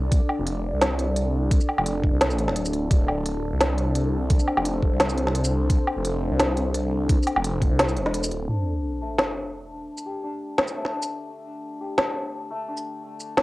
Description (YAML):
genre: half-time drum and bass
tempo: 172 BPM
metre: 4/4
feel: swing 54% on 16ths, half-time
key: D minor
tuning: A4 = 440 Hz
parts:
  - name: deep dark ambient pad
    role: sustained chords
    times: 0.0-13.4 s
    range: D4 to D5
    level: -30 LUFS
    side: equal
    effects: chorus, built-in reverb, sidechain pumping, cassette tape
  - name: phased detuned saw bass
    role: bass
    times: 0.0-8.5 s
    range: D1 to C2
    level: -25 LUFS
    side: equal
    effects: phaser
  - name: electronic kick drum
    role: drums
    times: 0.1-7.7 s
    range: none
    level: -20 LUFS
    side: equal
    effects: overdrive, cassette tape
  - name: organic electronic drum kit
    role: drums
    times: 0.1-13.4 s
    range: hi-hat, shaker, snare drum, woodblock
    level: -24 LUFS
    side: equal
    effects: cassette tape
  - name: santur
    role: arpeggios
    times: 8.5-13.4 s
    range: A3 to G4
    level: -32 LUFS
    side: left 2 dB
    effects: low-pass filter, cassette tape, analog delay
  - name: sub drop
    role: sound effects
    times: 8.5-9.9 s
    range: none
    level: -29 LUFS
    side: equal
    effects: none
room: moderate small room reverb, RT60 0.5 s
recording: home recording on cassette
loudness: -21 LUFS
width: side -19 dB against mid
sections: 0.0-8.5 A section; 8.5-13.4 B section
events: break 8.1-8.5; impact 8.5-9.9; filter sweep on ambient pad 8.5-13.4; filter sweep on santur 8.5-13.4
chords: 0.0 D5